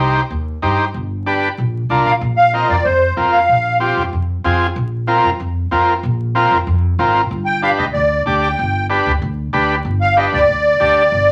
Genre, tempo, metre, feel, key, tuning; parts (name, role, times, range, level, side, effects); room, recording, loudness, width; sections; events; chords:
latin, cumbia; 189 BPM; 4/4; straight; A4 = 440 Hz
combo organ; accompaniment; 0.0-11.0 s; C4 to D5; -18 LUFS; equal
upright bass; bass; 0.0-11.3 s; G1 to G2; -22 LUFS; equal
musette accordion; melody; 2.1-3.8, 7.5-11.3 s; C5 to G5; -16 LUFS; equal
wet studio reverb, RT60 0.6 s; vinyl crackle; -16 LUFS; mono
0.0-2.2 A section; 2.2-11.3 B section
0.0 Cm; 0.9 G; 1.6 Bb; 2.2 Bbsus2; 7.3 G